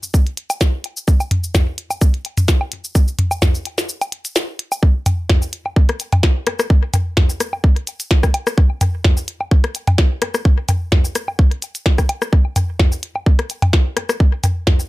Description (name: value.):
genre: techno.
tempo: 128 BPM.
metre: 4/4.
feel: swing 54% on 16ths.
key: none.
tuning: none.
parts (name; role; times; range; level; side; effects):
minimal click drum kit; drums; 0.0-14.9 s; hi-hat, shaker, snare drum; -22 LUFS; equal; overdrive.
electronic kick drum; drums; 0.1-14.8 s; none; -13 LUFS; equal; overdrive.
techno drum kit; percussion; 0.5-14.8 s; rim click, toms, woodblock; -19 LUFS; left 1 dB; overdrive, ping-pong delay.
room: little or no reverb.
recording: none.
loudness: -15 LUFS.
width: side -19 dB against mid.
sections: 0.0-4.8 A section; 4.8-14.9 B section.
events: break 3.9-4.8; drop 4.8-14.9.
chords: none.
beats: 0.14 0.61 | 1.08 1.54 2.01 2.48 | 2.95 3.42 3.89 4.36 | 4.83 5.29 5.76 6.23 | 6.70 7.17 7.64 8.11 | 8.58 9.04 9.51 9.98 | 10.45 10.92 11.39 11.86 | 12.33 12.79 13.26 13.73 | 14.20 14.67.